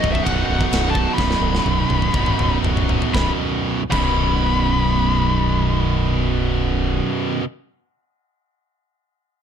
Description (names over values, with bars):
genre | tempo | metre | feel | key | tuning
heavy metal | 116-134 BPM | 4/4 | straight | B major | A4 = 440 Hz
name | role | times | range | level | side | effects
high-gain lead guitar | melody | 0.0-7.0 s | D#5 to B5 | -24 LUFS | left 3 dB | distortion
scooped high-gain guitar | riff | 0.0-7.4 s | B1 to D#4 | -25 LUFS | left 10 dB | distortion
tight distorted guitar | riff | 0.0-7.4 s | B1 to B2 | -22 LUFS | right 11 dB | distortion
growling fingered electric bass | bass | 0.0-7.0 s | B0 | -22 LUFS | equal | overdrive
tight metal drum kit | drums | 0.0-4.1 s | crash cymbal, kick drum, ride cymbal, snare drum, toms | -24 LUFS | left 1 dB | none
room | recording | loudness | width
little or no reverb | dark, warm production, lossy compression artefacts | -17 LUFS | side -8 dB against mid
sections
0.0-3.1 A section; 3.1-7.3 B section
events
slowing down 0.0-3.1; drum fill 1.2-3.1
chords
0.0 B; 3.1 B5